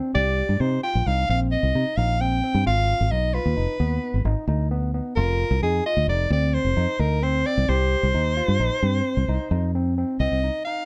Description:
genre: progressive instrumental, band music in an uneven meter.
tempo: 263 BPM (eighths).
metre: 11/8.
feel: straight.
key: C minor.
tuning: A4 = 440 Hz.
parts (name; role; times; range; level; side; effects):
overdriven tine electric piano; arpeggios; 0.0-10.9 s; Cb4 to G4; -31 LUFS; equal; tape echo.
breathy soprano saxophone; melody; 0.1-10.9 s; Ab4 to G5; -27 LUFS; equal; none.
fingered electric bass; bass; 0.2-10.5 s; F1 to C3; -25 LUFS; equal; none.
room: moderate small room reverb, RT60 0.5 s.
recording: dark, warm production.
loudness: -23 LUFS.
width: mono.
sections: 0.0-10.2 A section.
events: none.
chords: 0.2 Cm; 2.7 Abm; 5.2 F5; 7.7 Cm.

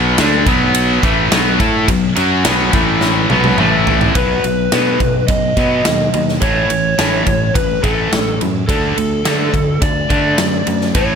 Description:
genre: hard rock.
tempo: 106 BPM.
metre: 4/4.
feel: straight.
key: unclear.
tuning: A4 = 440 Hz.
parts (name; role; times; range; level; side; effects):
cranked stack guitar; riff; 0.0-11.2 s; A2 to A4; -17 LUFS; left 1 dB; overdrive.
tight distorted guitar; riff; 0.0-4.1 s; A2 to A4; -17 LUFS; left 1 dB; distortion.
growling fingered electric bass; bass; 0.0-11.2 s; A1 to D3; -19 LUFS; equal; overdrive.
big rock drum kit; drums; 0.2-11.1 s; kick drum, ride cymbal, snare drum, toms; -18 LUFS; equal; none.
lead guitar through a small cranked amp; melody; 4.2-11.2 s; A4 to D#5; -18 LUFS; equal; overdrive, slapback echo.
room: studio ambience.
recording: none.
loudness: -12 LUFS.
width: side -6 dB against mid.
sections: 0.0-4.1 A section; 4.1-11.2 B section.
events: drum fill 3.0-4.1.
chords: 0.0 B5; 2.7 A5; 3.3 B5; 3.6 A5; 4.1 B; 6.4 A; 8.7 D.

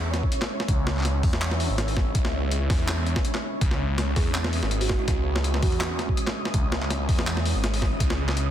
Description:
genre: half-time drum and bass.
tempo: 164 BPM.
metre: 4/4.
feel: swing 54% on 16ths, half-time.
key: C# minor.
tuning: A4 = 440 Hz.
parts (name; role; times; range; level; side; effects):
deep dark ambient pad; sustained chords; 0.0-8.5 s; G#3 to E5; -34 LUFS; right 1 dB; chorus, built-in reverb, sidechain pumping.
phased detuned saw bass; bass; 0.0-8.5 s; G#1 to E2; -26 LUFS; equal; phaser.
flickering grainy texture; texture; 0.0-8.5 s; C#4 to D#6; -35 LUFS; equal; built-in reverb.
boom bap sampler-style drum kit; drums; 0.1-8.4 s; handclaps, hi-hat, snare drum; -29 LUFS; equal; overdrive.
electronic kick drum; drums; 0.2-8.1 s; none; -25 LUFS; equal; overdrive.
kalimba; melody; 4.2-6.1 s; E4 to G#4; -35 LUFS; right 7 dB; dub echo.
room: little or no reverb.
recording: dense, heavily limited modern master.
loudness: -22 LUFS.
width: side -11 dB against mid.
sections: 0.0-8.5 A section.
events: none.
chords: 0.0 C#m.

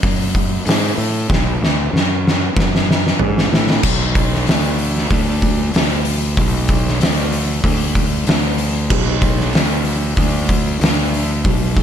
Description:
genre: stoner and doom metal.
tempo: 95 BPM.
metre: 4/4.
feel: straight.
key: B dorian.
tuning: A4 = 440 Hz.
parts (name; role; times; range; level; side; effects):
fuzz fingered electric bass; bass; 0.0-11.8 s; B1 to A2; -18 LUFS; equal; overdrive.
oversized low-tuned drum kit; drums; 0.0-11.8 s; crash cymbal, hi-hat, kick drum, snare drum, toms; -16 LUFS; equal; none.
room: little or no reverb.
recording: none.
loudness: -14 LUFS.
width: side -9 dB against mid.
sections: 0.0-3.8 A section; 3.8-11.8 B section.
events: drum fill 1.3-3.8.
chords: none.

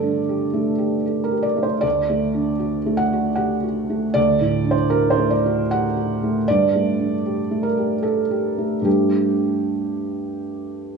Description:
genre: neoclassical minimalist piano.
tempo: 77 BPM.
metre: 3/4.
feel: uneven beats, rubato.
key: G harmonic minor.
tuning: A4 = 440 Hz.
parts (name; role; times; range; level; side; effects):
felt-muted upright piano; solo; 0.0-11.0 s; D2 to F#5; -18 LUFS; right 2 dB; none.
room: moderate lush hall reverb, RT60 2.7 s.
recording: rough home demo mix, cassette tape, small room reverb.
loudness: -18 LUFS.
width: side -5 dB against mid.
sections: 0.0-11.0 A section.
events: none.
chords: 0.0 Gmadd9; 1.8 D; 6.5 Gsus2.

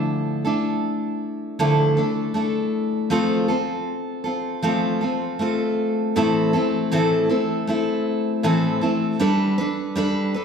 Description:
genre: pop.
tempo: 79 BPM.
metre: 4/4.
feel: swing 55% on 16ths.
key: unclear.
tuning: A4 = 438 Hz.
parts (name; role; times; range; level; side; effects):
picked steel-string acoustic guitar; solo; 0.0-10.4 s; A2 to B4; -20 LUFS; equal; none.
room: wet recital hall reverb, RT60 1.5 s.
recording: recorded in a church or concert hall.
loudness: -20 LUFS.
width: side -6 dB against mid.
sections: 0.0-6.2 A section; 6.2-10.4 B section.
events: none.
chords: 0.0 Dmadd9; 3.1 F; 6.2 Am; 9.2 Gadd9.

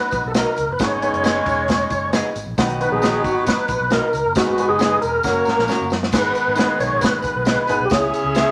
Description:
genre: uptempo 1960s-style soul.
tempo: 135 BPM.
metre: 4/4.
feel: straight.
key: unclear.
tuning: A4 = 440 Hz.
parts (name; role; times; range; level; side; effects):
tonewheel organ; melody; 0.0-8.5 s; F#4 to C#5; -22 LUFS; equal; overdrive, chorus vibrato, slow rotary speaker.
warm horn section; second line; 0.0-8.5 s; D#3 to E5; -28 LUFS; equal; none.
vintage muted fingered electric bass; bass; 0.1-8.4 s; E1 to F#2; -32 LUFS; equal; none.
warm soul drum kit; drums; 0.1-8.5 s; crash cymbal, hi-hat, kick drum, snare drum; -24 LUFS; equal; none.
tambourine; percussion; 0.1-8.5 s; none; -39 LUFS; equal; none.
electric guitar through a small old amp; stabs; 0.3-8.5 s; C#4 to E5; -28 LUFS; equal; none.
clear baby grand piano; accompaniment; 0.8-8.5 s; G#2 to C#5; -29 LUFS; equal; none.
room: wet studio reverb, RT60 0.9 s.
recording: none.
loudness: -19 LUFS.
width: mono.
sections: 0.0-6.1 A section; 6.1-8.5 B section.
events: drum fill 5.2-6.1; grand piano fill 8.4.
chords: 0.0 B; 0.8 G#m; 2.6 B; 4.4 G#m; 5.2 F#; 6.1 G#m; 7.9 C#m.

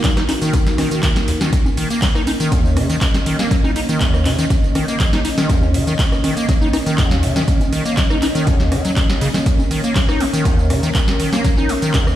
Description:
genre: acid house.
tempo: 121 BPM.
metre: 4/4.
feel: straight.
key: Eb minor pentatonic.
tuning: A4 = 440 Hz.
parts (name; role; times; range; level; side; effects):
dark analog pad; sustained chords; 0.0-12.2 s; Bb3 to Eb5; -23 LUFS; equal; chorus, sidechain pumping.
acid bass, square; riff; 0.0-12.2 s; Eb2 to Eb4; -20 LUFS; equal; tube saturation, ensemble chorus, sidechain pumping, ping-pong delay.
booming analog drum machine; drums; 0.0-12.2 s; congas, handclaps, hi-hat, rim click, snare drum, tambourine; -22 LUFS; equal; overdrive.
dusty soul sampler-style drum kit; drums; 0.0-12.1 s; hi-hat, ride cymbal, snare drum; -35 LUFS; right 2 dB; none.
electronic kick drum; drums; 0.0-12.0 s; none; -17 LUFS; equal; overdrive.
room: light reverb, digital ambience.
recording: played on a big sound system in a bare room, stone room reverb.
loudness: -14 LUFS.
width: side -12 dB against mid.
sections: 0.0-12.2 A section.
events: none.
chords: 0.0 Eb5.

